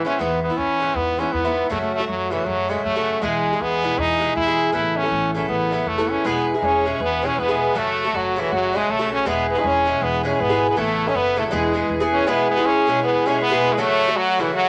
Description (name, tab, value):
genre	celtic folk, Celtic hornpipe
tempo	159 BPM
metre	4/4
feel	swing 60% on 8ths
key	E major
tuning	A4 = 440 Hz
part	warm fiddle	second line	0.0-0.1, 6.2-14.7 s	E4 to C#5	-29 LUFS	equal	none
part	Irish bouzouki	accompaniment	0.0-14.7 s	G#2 to A4	-24 LUFS	equal	none
part	stopped French horn	melody	0.1-14.7 s	E3 to E4	-24 LUFS	equal	none
part	upright bass	bass	0.2-12.2 s	E1 to F#2	-33 LUFS	equal	none
room	moderate studio reverb, RT60 0.6 s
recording	none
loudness	-20 LUFS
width	mono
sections	0.2-12.3 A section; 12.3-14.7 A section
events	none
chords	0.2 E; 1.7 F#m; 3.2 E; 4.7 Aadd9; 6.3 E; 7.8 F#m; 9.3 E; 10.8 Aadd9; 11.5 E; 13.8 F#m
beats	| 0.20 0.58 0.96 1.34 | 1.72 2.09 2.47 2.85 | 3.23 3.61 3.98 4.36 | 4.74 5.12 5.50 5.87 | 6.25 6.63 7.01 7.38 | 7.76 8.14 8.52 8.89 | 9.27 9.65 10.03 10.40 | 10.78 11.15 11.53 11.91 | 12.29 12.66 13.04 13.41 | 13.79 14.17 14.54